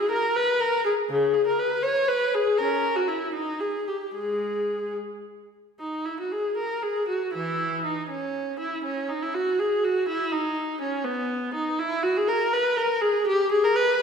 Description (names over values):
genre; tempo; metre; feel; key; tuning
classical, baroque-style suite movement for unaccompanied viola; 80 BPM (dotted quarters); 6/8; rubato; G# minor; A4 = 440 Hz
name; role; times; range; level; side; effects
warm viola; solo; 0.0-14.0 s; C#3 to C#5; -23 LUFS; equal; none
room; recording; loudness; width
wet scoring stage reverb, RT60 1.7 s; minimal, uncompressed stereo recording; -23 LUFS; side -6 dB against mid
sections
0.0-5.8 A section; 5.8-14.0 A section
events
none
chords
none